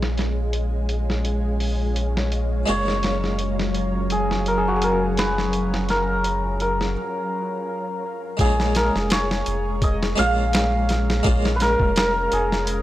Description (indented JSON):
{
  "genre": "trip hop",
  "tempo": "84 BPM",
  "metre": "4/4",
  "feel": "swing 54% on 16ths",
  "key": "Bb minor",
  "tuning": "A4 = 440 Hz",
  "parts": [
    { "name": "harpsichord", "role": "accompaniment", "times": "0.0-12.8 s", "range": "Bb2 to F4", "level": "-27 LUFS", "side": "equal", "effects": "tremolo, vintage 12-bit sampler grit" },
    { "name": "string machine, cellos", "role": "sustained chords", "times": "0.0-12.8 s", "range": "Gb3 to Bb5", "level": "-29 LUFS", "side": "equal", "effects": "ensemble chorus" },
    { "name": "soft dub sub bass", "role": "bass", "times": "0.0-12.8 s", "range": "F1 to Bb1", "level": "-24 LUFS", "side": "equal", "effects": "none" },
    { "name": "boom bap sampler-style drum kit", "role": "drums", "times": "0.0-12.8 s", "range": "hi-hat, kick drum, snare drum", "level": "-25 LUFS", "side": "equal", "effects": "low-pass filter on hats, low-pass filter on kick, low-pass filter on snare" },
    { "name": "bowed-like drone", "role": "texture", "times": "0.0-7.0 s", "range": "Ab3", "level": "-34 LUFS", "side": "equal", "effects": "built-in reverb" },
    { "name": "santur", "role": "melody", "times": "2.7-12.8 s", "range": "Gb4 to F5", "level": "-23 LUFS", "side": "equal", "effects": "tape echo" }
  ],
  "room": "little or no reverb",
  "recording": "dry, gritty hardware recording, cassette tape",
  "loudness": "-19 LUFS",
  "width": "side -14 dB against mid",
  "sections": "0.0-8.4 A section; 8.4-12.8 B section",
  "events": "break 7.0-8.4",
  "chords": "0.0 Bbm7; 2.7 Gbmaj7; 8.4 Bbm7"
}